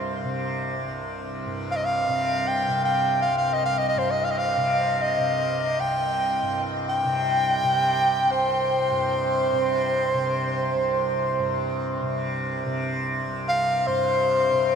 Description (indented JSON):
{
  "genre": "world meditative, free-time meditation music",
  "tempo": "free time",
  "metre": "none",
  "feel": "none",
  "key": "C minor pentatonic",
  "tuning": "A4 = 440 Hz",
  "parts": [
    { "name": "breathy soprano saxophone", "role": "melody", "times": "0.0-14.8 s", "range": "C5 to G5", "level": "-22 LUFS", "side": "equal", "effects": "ping-pong delay" },
    { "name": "tanpura", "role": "drone", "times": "0.0-14.8 s", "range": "C2 to C3", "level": "-28 LUFS", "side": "equal", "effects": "none" }
  ],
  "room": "wet huge ambient reverb, RT60 8.3 s",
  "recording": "dreamy mix soaked in reverb",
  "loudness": "-22 LUFS",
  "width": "side -7 dB against mid",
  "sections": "0.0-14.8 A section",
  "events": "none",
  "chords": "none"
}